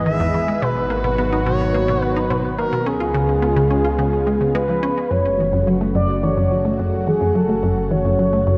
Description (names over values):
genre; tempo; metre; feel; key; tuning
ambient, sequencer-driven space music; 107 BPM; 4/4; straight; F# minor from 5.1 s; A4 = 441 Hz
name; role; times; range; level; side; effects
expressive synth lead; melody; 0.0-8.6 s; G#4 to E5; -23 LUFS; equal; chorus, shimmer reverb, delay
lush unison pad; sustained chords; 0.0-8.6 s; C#3 to G#4; -26 LUFS; equal; chorus, shimmer reverb
fat analog bass; bass; 0.0-8.6 s; F#1 to C#2; -27 LUFS; equal; none
resonant blip pluck; riff; 0.1-8.5 s; E2 to E#4; -24 LUFS; equal; chorus, delay
room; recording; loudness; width
wet lush hall reverb, RT60 2.6 s; cassette tape; -19 LUFS; mono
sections
0.0-5.1 A section; 5.1-8.6 B section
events
none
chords
0.0 E/G#; 0.6 B/G#; 2.9 C#7; 5.1 F#m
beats
0.06 | 0.62 1.18 1.74 2.30 | 2.87 3.42 3.99 4.55 | 5.11 5.67 6.23 6.79 | 7.35 7.91 8.47